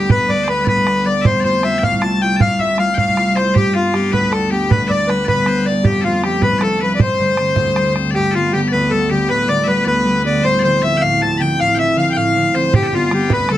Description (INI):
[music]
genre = celtic folk, Celtic jig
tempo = 104 BPM (dotted quarters)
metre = 6/8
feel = straight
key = G mixolydian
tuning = A4 = 439 Hz
[part]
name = accordion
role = melody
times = 0.0-13.6 s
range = F4 to A5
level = -17 LUFS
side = equal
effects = none
[part]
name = loud bright bagpipes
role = second line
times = 0.0-13.6 s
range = F4 to B5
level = -22 LUFS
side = left 6 dB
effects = none
[part]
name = concert harp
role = accompaniment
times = 0.0-13.6 s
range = D1 to F4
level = -18 LUFS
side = equal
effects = none
[part]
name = bodhran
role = percussion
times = 0.1-8.0, 12.7-13.6 s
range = none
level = -18 LUFS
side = right 3 dB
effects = none
[sound]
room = moderate studio reverb, RT60 0.5 s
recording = none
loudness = -13 LUFS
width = side -13 dB against mid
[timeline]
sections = 0.0-8.1 A section; 8.1-13.6 A section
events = none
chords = 0.0 G; 1.3 Fadd9; 3.5 G; 5.8 Fadd9; 7.0 Gsus4; 8.1 G; 10.4 Dm7; 12.7 G